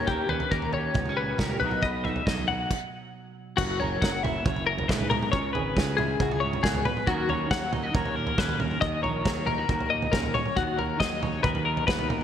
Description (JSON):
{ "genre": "math rock and midwest emo", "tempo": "137 BPM", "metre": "4/4", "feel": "straight", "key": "B major", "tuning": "A4 = 440 Hz", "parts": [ { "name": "clean electric guitar", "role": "accompaniment", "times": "0.0-12.2 s", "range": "F#2 to C#5", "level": "-33 LUFS", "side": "right 5 dB", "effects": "ensemble chorus" }, { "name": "twelve-string electric guitar", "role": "arpeggios", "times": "0.0-12.2 s", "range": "F#4 to F#5", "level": "-28 LUFS", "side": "left 6 dB", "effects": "tremolo" }, { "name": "fuzz fingered electric bass", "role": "bass", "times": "0.0-12.2 s", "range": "F#1 to G#2", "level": "-32 LUFS", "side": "right 1 dB", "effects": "overdrive" }, { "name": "loose indie drum kit", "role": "drums", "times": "0.1-12.2 s", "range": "crash cymbal, kick drum, snare drum, toms", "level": "-29 LUFS", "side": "right 1 dB", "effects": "gated reverb" } ], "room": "moderate lush hall reverb, RT60 1.9 s, small room ambience", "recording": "bright 1980s-style digital production", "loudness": "-24 LUFS", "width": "side -9 dB against mid", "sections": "0.0-3.6 A section; 3.6-12.2 B section", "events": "stop 2.7-3.6", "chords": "0.0 D#7; 1.6 B; 3.6 F#7; 5.3 C#m7; 7.1 D#m7; 10.6 Bmaj7/D#", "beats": "| 0.07 0.50 0.94 1.38 | 1.82 2.26 2.69 3.13 | 3.57 4.01 4.44 4.88 | 5.32 5.75 6.19 6.63 | 7.06 7.50 7.94 8.37 | 8.81 9.25 9.69 10.12 | 10.56 11.00 11.43 11.87" }